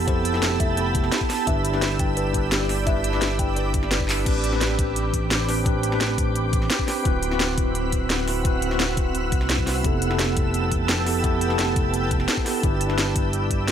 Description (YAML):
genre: liquid drum and bass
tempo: 172 BPM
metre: 4/4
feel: straight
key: A minor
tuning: A4 = 440 Hz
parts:
  - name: mellow tine electric piano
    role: accompaniment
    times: 0.0-13.7 s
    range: B3 to B4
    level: -26 LUFS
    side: left 1 dB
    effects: medium stereo tremolo, digital delay
  - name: shimmering ambient pad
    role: sustained chords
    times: 0.0-13.7 s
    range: C4 to E6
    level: -28 LUFS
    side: right 2 dB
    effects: chorus, built-in reverb, sidechain pumping
  - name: smooth gliding synth bass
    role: bass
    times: 0.0-13.7 s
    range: D1 to C2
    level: -26 LUFS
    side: equal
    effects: none
  - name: kalimba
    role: arpeggios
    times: 0.1-4.1 s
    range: G4 to G5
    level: -33 LUFS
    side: left 3 dB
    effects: digital delay
  - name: drum and bass drum kit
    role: drums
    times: 0.1-13.7 s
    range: crash cymbal, handclaps, hi-hat, snare drum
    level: -26 LUFS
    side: equal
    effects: none
  - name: electronic kick drum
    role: drums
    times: 0.1-13.6 s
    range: none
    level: -25 LUFS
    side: equal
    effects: none
room: light reverb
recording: none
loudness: -20 LUFS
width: side -9 dB against mid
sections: 0.0-4.3 A section; 4.3-13.7 A section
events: drop 0.0-4.3, 4.3-13.7; drum fill 4.1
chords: 0.0 Fmaj9#11; 1.5 Em7/G; 4.3 Am11; 7.1 D13; 9.8 Fmaj9#11; 12.6 Em7/G